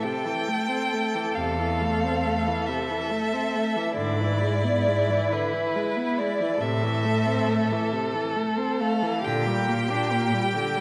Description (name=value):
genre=classical, slow romantic movement for string quartet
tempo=46 BPM (dotted quarters)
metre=12/8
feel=rubato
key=unclear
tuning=A4 = 440 Hz
part: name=rich violin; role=melody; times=0.0-10.8 s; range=B4 to G5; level=-31 LUFS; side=equal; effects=none
part: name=rich violin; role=second line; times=0.0-10.8 s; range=E4 to A4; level=-31 LUFS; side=equal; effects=none
part: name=warm viola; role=accompaniment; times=0.0-10.8 s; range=C3 to D4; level=-30 LUFS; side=equal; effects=none
part: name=rich cello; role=bass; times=1.4-10.3 s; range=E2 to Bb2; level=-31 LUFS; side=equal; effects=none
room=wet recital hall reverb, RT60 1.8 s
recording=dark, warm production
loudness=-25 LUFS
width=mono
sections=0.0-10.8 A section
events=none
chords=0.0 Am; 4.0 E7/G#; 6.6 Am; 9.2 Gm/Bb